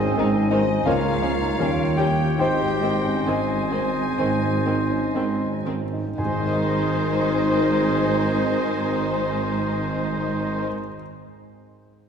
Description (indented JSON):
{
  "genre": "classical, romantic movement for piano and orchestra",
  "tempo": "57-93 BPM",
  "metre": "4/4",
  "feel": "rubato",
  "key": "Ab major",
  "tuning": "A4 = 440 Hz",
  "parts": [
    { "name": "warm concert grand piano", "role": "melody", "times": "0.0-12.1 s", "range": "Db2 to Ab5", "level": "-26 LUFS", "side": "left 1 dB", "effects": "none" },
    { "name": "clear clarinet", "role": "second line", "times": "0.0-10.7 s", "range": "C4 to Ab4", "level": "-33 LUFS", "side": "right 1 dB", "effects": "none" },
    { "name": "clear oboe", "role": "second line", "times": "0.0-10.7 s", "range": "C5 to Eb5", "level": "-31 LUFS", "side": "left 1 dB", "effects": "none" },
    { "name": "rich symphonic violin section", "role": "second line", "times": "0.0-10.6 s", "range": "C5 to Ab5", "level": "-33 LUFS", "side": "left 3 dB", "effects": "none" },
    { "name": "small flute group", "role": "second line", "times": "0.0-10.6 s", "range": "Eb5 to Bb5", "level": "-34 LUFS", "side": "equal", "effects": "none" },
    { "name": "mellow French horn section", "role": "sustained chords", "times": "0.0-10.7 s", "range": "Eb3 to Eb4", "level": "-30 LUFS", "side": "left 1 dB", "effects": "none" },
    { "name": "clear symphonic double bass section", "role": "bass", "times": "0.0-10.7 s", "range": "Ab1 to Eb2", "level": "-32 LUFS", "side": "right 4 dB", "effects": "none" },
    { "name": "mellow tuba", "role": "bass", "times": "0.0-10.7 s", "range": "Ab1 to Eb2", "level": "-31 LUFS", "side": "right 4 dB", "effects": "none" },
    { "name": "rich symphonic cello section", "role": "bass", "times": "0.0-10.7 s", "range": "Db2 to Ab2", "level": "-30 LUFS", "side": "right 4 dB", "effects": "none" },
    { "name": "dark symphonic violin section", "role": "melody", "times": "0.2-10.7 s", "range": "C4 to C5", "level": "-30 LUFS", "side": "left 4 dB", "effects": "none" },
    { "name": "clear symphonic viola section", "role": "accompaniment", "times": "0.2-10.7 s", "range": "Eb3 to Eb4", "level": "-29 LUFS", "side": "equal", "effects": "none" },
    { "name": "timpani", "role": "percussion", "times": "6.2-10.7 s", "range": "Ab2", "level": "-34 LUFS", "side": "left 1 dB", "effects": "none" }
  ],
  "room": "wet concert hall reverb, RT60 2.4 s",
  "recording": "recorded in a church or concert hall",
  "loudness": "-20 LUFS",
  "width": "side -7 dB against mid",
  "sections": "0.0-6.2 A section; 6.2-10.1 B section",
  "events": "slowing down 0.0-6.2",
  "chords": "0.0 Ab; 0.9 Bbm/Db; 1.6 Eb7; 2.4 Ab",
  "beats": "0.17 0.86 1.58 | 2.39 3.26 4.18 5.15 | 6.18 7.17 8.15 9.15"
}